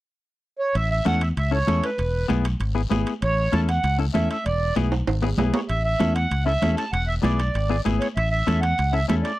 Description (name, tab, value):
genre	latin, cumbia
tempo	194 BPM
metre	4/4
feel	straight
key	A major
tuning	A4 = 440 Hz
part	accordion	melody	0.6-9.4 s	B4 to A5	-25 LUFS	right 2 dB	none
part	guiro	percussion	0.7-9.4 s	none	-42 LUFS	left 8 dB	none
part	fingered electric bass	bass	0.8-9.2 s	E1 to E2	-23 LUFS	equal	none
part	congas	percussion	0.8-9.3 s	none	-27 LUFS	right 2 dB	none
part	timbales	percussion	0.8-9.4 s	none	-30 LUFS	right 4 dB	none
part	semi-hollow electric guitar	accompaniment	1.1-9.3 s	B3 to A4	-27 LUFS	left 7 dB	none
room	little or no reverb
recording	dry, close 1970s-style studio recording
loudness	-20 LUFS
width	side -16 dB against mid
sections	0.8-9.4 A section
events	drum fill 4.9-5.7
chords	0.0 N.C.; 0.8 A; 2.0 E; 3.2 A; 4.5 E7; 5.7 A; 6.9 E7; 8.2 A